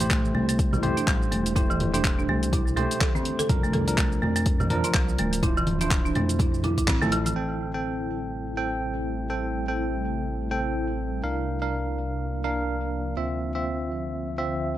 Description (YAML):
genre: afro house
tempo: 124 BPM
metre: 4/4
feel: swing 58% on 16ths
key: A phrygian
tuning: A4 = 440 Hz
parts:
  - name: ethereal airy pad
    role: sustained chords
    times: 0.0-14.8 s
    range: C3 to E5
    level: -35 LUFS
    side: left 2 dB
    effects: ensemble chorus, built-in reverb, sidechain pumping
  - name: bell-like tine electric piano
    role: stabs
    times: 0.0-14.8 s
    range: F3 to G5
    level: -29 LUFS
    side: right 2 dB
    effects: medium stereo tremolo, sidechain pumping, analog delay
  - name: smooth synth bass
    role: bass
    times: 0.0-14.8 s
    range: D1 to F2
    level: -30 LUFS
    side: equal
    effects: tube saturation, sidechain pumping
  - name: deep house drum kit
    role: drums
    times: 0.0-7.3 s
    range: handclaps, hi-hat, shaker, toms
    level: -30 LUFS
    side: equal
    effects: overdrive, low-pass filter on hats, low-pass filter on perc, low-pass filter on snare, low-pass filter on toms, low-pass filter on room
  - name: folk marimba with hard mallets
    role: arpeggios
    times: 0.1-7.4 s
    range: E3 to A4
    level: -28 LUFS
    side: equal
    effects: sidechain pumping, analog delay
  - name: electronic kick drum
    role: drums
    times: 0.1-7.0 s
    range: none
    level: -25 LUFS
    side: equal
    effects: overdrive
  - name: congas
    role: percussion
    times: 0.3-7.3 s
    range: none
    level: -32 LUFS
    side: right 1 dB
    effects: none
room: little or no reverb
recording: dry, gritty hardware recording, transformer saturation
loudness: -23 LUFS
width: side -13 dB against mid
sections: 0.0-7.4 A section; 7.4-14.8 B section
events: band accent 6.9; filter sweep on ambient pad 7.4-14.8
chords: 0.0 Am7; 3.5 C9sus4; 5.4 Dm9; 7.4 Am7; 11.2 C9sus4; 13.2 Dm9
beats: 0.11 0.59 1.07 | 1.56 2.04 2.53 3.01 | 3.49 3.98 4.46 4.95 | 5.43 5.91 6.40 6.88 | 7.37 7.85 8.33 8.82 | 9.30 9.78 10.27 10.75 | 11.24 11.72 12.20 12.69 | 13.17 13.65 14.14 14.62